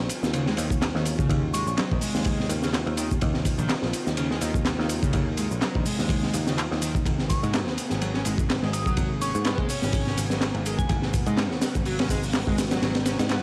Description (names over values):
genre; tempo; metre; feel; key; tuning
breakbeat, breaks; 125 BPM; 4/4; swing 55% on 16ths; Eb minor; A4 = 440 Hz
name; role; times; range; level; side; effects
lush unison pad; sustained chords; 0.0-13.4 s; Eb3 to Ab4; -39 LUFS; equal; chorus, vintage 12-bit sampler grit, sidechain pumping, cassette tape
picked electric bass; bass; 0.0-13.4 s; Ab1 to Ab2; -31 LUFS; equal; tube saturation
crunchy breakbeat drum kit; drums; 0.1-13.4 s; hi-hat, kick drum, ride cymbal, snare drum; -28 LUFS; equal; cassette tape
punchy analog drum machine; drums; 0.1-13.4 s; handclaps, hi-hat, shaker; -37 LUFS; equal; cassette tape
overdriven synth lead; riff; 0.3-13.4 s; Db3 to Db4; -33 LUFS; equal; distortion, lush chorus, cassette tape, tape echo
soft synth bell; melody; 1.5-1.7, 7.3-11.0 s; Ab5 to Eb6; -37 LUFS; equal; chorus, phaser, small speaker sound, tape echo
room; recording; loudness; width
moderate booth ambience, RT60 0.2 s; home recording on cassette; -25 LUFS; mono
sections
0.0-13.4 A section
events
none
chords
0.0 Ebm9; 7.1 Abm9